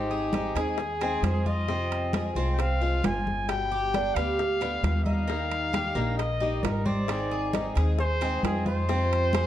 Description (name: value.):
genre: latin, Cuban son and guajira.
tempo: 133 BPM.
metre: 4/4.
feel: straight.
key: unclear.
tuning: A4 = 440 Hz.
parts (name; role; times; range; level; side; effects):
warm trumpet; melody; 0.0-9.5 s; G4 to Ab5; -30 LUFS; left 2 dB; none.
picked swing-style acoustic guitar; accompaniment; 0.0-9.5 s; B2 to Ab4; -33 LUFS; left 1 dB; none.
Cuban tres; arpeggios; 0.0-9.5 s; Bb3 to Ab4; -33 LUFS; right 3 dB; none.
upright bass; bass; 0.0-9.5 s; G1 to F2; -29 LUFS; equal; none.
congas; percussion; 0.1-9.5 s; none; -32 LUFS; equal; none.
bongos; percussion; 0.3-9.5 s; none; -38 LUFS; left 8 dB; none.
timbales; percussion; 0.3-9.5 s; none; -37 LUFS; right 8 dB; none.
room: moderate large studio reverb, RT60 1.1 s.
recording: dark, warm production.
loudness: -24 LUFS.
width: side -12 dB against mid.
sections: 0.0-9.5 A section.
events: none.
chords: 0.0 Ab; 1.7 Fm; 3.5 G; 5.3 Eb; 7.1 Ab; 8.9 Fm.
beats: 0.33 0.79 1.24 | 1.69 2.14 2.59 3.04 | 3.49 3.94 4.39 4.84 | 5.29 5.74 6.19 6.64 | 7.09 7.54 7.99 8.44 | 8.89 9.34.